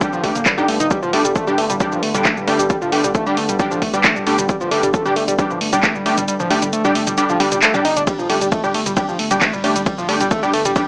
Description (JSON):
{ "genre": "driving peak-time techno", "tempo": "134 BPM", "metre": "4/4", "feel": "straight", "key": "unclear", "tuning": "A4 = 440 Hz", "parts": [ { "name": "overdriven synth lead", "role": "riff", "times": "0.0-10.8 s", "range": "F3 to Eb4", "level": "-23 LUFS", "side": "equal", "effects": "sidechain pumping, digital delay" }, { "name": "rave stab", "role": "stabs", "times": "0.0-10.9 s", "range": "G3 to G4", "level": "-23 LUFS", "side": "equal", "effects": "chorus, built-in reverb, sidechain pumping, digital delay" }, { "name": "deep dark ambient pad", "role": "drone", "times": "0.0-10.9 s", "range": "G2 to D3", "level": "-30 LUFS", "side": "equal", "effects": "chorus, built-in reverb, sidechain pumping" }, { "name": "electronic kick drum", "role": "drums", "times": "0.0-10.9 s", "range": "none", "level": "-24 LUFS", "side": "equal", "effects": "overdrive" }, { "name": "punchy analog drum machine", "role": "drums", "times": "0.0-10.9 s", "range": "handclaps, hi-hat, ride cymbal, shaker, toms", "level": "-23 LUFS", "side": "equal", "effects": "sidechain pumping on hats, sidechain pumping on cymbals, sidechain pumping on perc, sidechain pumping on toms" }, { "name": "saturated sub bass", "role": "bass", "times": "0.2-10.8 s", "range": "G1", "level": "-37 LUFS", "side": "equal", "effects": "overdrive, sidechain pumping, low-pass filter" } ], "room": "moderate stone room reverb, RT60 1.0 s, digital ambience", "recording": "small speaker sound", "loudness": "-17 LUFS", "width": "mono", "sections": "0.0-10.9 A section", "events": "kick drops out 6.3-8.1", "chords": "0.0 G5" }